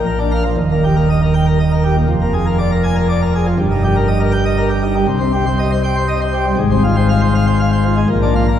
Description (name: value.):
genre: classical, organ toccata.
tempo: 120 BPM.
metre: 3/4.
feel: straight.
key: Eb major.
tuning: A4 = 439 Hz.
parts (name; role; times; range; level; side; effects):
pipe organ, plenum; solo; 0.0-8.6 s; Eb1 to Ab5; -13 LUFS; equal; none.
room: wet church reverb, RT60 3.5 s.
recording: heard from further back in the room.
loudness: -13 LUFS.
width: side -10 dB against mid.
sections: 0.6-8.6 A section.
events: none.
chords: 0.1 Bb; 0.6 Eb; 2.1 Bb7/F; 3.6 Eb/G; 5.1 Cm; 6.6 Fm/Ab; 8.1 Bb.